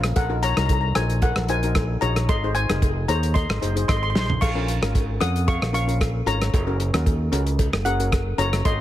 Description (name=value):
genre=calypso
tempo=113 BPM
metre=4/4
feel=swing 53% on 16ths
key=unclear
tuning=A4 = 440 Hz
part: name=steel pan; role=accompaniment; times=0.0-8.6 s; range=Db4 to Db5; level=-30 LUFS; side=left 3 dB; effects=none
part: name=modern bright fingered electric bass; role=bass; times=0.0-8.8 s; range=F1 to F2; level=-24 LUFS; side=right 1 dB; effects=none
part: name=warm soul drum kit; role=drums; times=0.0-8.8 s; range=crash cymbal, hi-hat, kick drum, rim click, snare drum, toms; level=-24 LUFS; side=equal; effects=none
part: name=steel pan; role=melody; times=0.2-8.8 s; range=Bb4 to Eb6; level=-26 LUFS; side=left 2 dB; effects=tape echo
part: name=cowbell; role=percussion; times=0.2-8.8 s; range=none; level=-34 LUFS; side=left 6 dB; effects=none
room=little or no reverb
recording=heavily compressed radio sound, multiband compression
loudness=-19 LUFS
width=side -13 dB against mid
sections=0.0-8.8 A section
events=drum fill 4.1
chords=0.2 Ebm/Bb; 2.3 Ab; 4.4 Bbm; 6.5 Gb